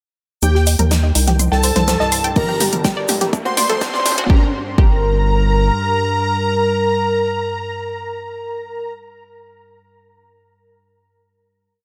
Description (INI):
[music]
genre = melodic techno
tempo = 124 BPM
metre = 4/4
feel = straight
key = G minor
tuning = A4 = 440 Hz
[part]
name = unison lead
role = melody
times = 0.4-8.9 s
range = G4 to C5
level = -24 LUFS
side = equal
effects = subtle chorus, sidechain pumping, digital delay
[part]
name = big bright polysynth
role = second line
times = 0.4-8.9 s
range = G5 to C6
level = -28 LUFS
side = equal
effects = ensemble chorus, sidechain pumping, dub echo
[part]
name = analog pluck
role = arpeggios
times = 0.4-4.9 s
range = D4 to C6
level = -25 LUFS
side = equal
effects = chorus, phaser, sidechain pumping, dub echo
[part]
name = round analog bass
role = bass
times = 0.4-5.7 s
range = D1 to Eb2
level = -20 LUFS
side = equal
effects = sidechain pumping
[part]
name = analog drone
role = drone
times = 1.5-9.0 s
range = G2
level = -29 LUFS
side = equal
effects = chorus, sidechain pumping
[part]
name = gated 80s drum kit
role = drums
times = 0.4-4.2 s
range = hi-hat, shaker, snare drum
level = -28 LUFS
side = equal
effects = sidechain pumping on hats, high-pass filter on hats, high-pass filter on snare, sidechain pumping on perc, high-pass filter on perc, high-pass filter on room
[part]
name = house drum kit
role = drums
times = 0.4-4.3 s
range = hi-hat, toms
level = -23 LUFS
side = equal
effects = none
[part]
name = riser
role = sound effects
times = 2.5-4.3 s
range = none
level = -32 LUFS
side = equal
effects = none
[part]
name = electronic kick drum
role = drums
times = 2.4-4.9 s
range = none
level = -16 LUFS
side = equal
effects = none
[sound]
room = light reverb, studio ambience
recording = high-pass filter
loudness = -17 LUFS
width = mono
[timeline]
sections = 0.4-4.3 build; 4.3-8.2 final chord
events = build-up 0.4-4.3; drum fill 0.4-4.3; filter sweep on synth arpeggio sound 0.4-4.3; filter sweep 0.4-4.3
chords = 0.4 Eb; 1.4 C5; 2.4 Gm; 3.3 D; 4.3 Gm